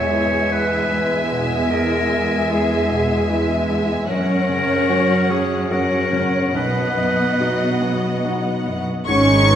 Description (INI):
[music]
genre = cinematic, emotional film score for orchestra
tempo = 73 BPM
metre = 3/4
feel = uneven beats, rubato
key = B major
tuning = A4 = 440 Hz
[part]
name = rich studio violin section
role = melody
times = 0.0-9.6 s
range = F#5 to C#6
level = -26 LUFS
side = left 2 dB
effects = none
[part]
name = bright clarinet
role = second line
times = 0.0-9.6 s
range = G#4 to C#5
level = -23 LUFS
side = left 1 dB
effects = none
[part]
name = warm symphonic violin section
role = second line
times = 0.0-9.6 s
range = D#4 to E5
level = -25 LUFS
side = left 2 dB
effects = none
[part]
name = felt-muted upright piano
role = accompaniment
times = 0.0-9.6 s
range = B1 to B4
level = -23 LUFS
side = left 1 dB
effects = none
[part]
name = rich studio viola section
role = accompaniment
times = 0.0-9.6 s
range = D#3 to C#4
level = -25 LUFS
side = right 2 dB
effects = none
[part]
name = rich symphonic cello section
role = bass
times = 0.0-9.6 s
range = E2 to C#4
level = -23 LUFS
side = right 2 dB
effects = none
[part]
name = rich symphonic double bass section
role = bass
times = 9.1-9.6 s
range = G#1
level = -19 LUFS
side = right 2 dB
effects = none
[sound]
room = wet recital hall reverb, RT60 1.8 s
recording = recorded in a church or concert hall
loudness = -16 LUFS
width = side -9 dB against mid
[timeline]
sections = 0.0-9.1 A section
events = none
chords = 0.0 E; 4.1 F#; 6.5 B